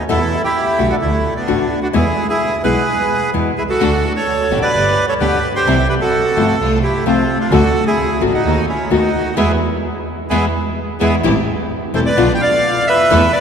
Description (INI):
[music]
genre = tango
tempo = 129 BPM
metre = 4/4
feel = rubato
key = unclear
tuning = A4 = 440 Hz
[part]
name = bandoneon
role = melody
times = 0.0-13.4 s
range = A3 to G5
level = -16 LUFS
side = right 1 dB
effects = none
[part]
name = warm double bass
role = bass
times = 0.0-13.3 s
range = E1 to E2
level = -20 LUFS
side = right 2 dB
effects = none
[part]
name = nylon-string guitar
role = accompaniment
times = 0.1-13.2 s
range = B2 to G4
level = -19 LUFS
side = left 4 dB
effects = none
[part]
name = bright studio string section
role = stabs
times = 3.8-13.3 s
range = G3 to A4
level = -25 LUFS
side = right 3 dB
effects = none
[sound]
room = wet cathedral reverb, RT60 4.4 s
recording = recorded in a church or concert hall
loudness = -13 LUFS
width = side -7 dB against mid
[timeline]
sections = 0.0-11.2 A section; 11.2-13.4 B section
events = band accent 9.4-11.2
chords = 0.1 Em; 1.0 D; 1.9 E; 3.8 D; 4.7 G; 5.7 C; 6.6 F/C; 7.5 D; 8.4 B7/D#; 9.4 E; 11.2 Am7; 12.2 Bdim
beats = | 0.09 0.56 1.02 1.48 | 1.95 2.41 2.87 3.34 | 3.81 4.27 4.74 5.20 | 5.67 6.13 6.59 7.06 | 7.52 7.98 8.45 8.91 | 9.38 9.84 10.31 10.78 | 11.24 11.71 12.18 12.64 | 13.11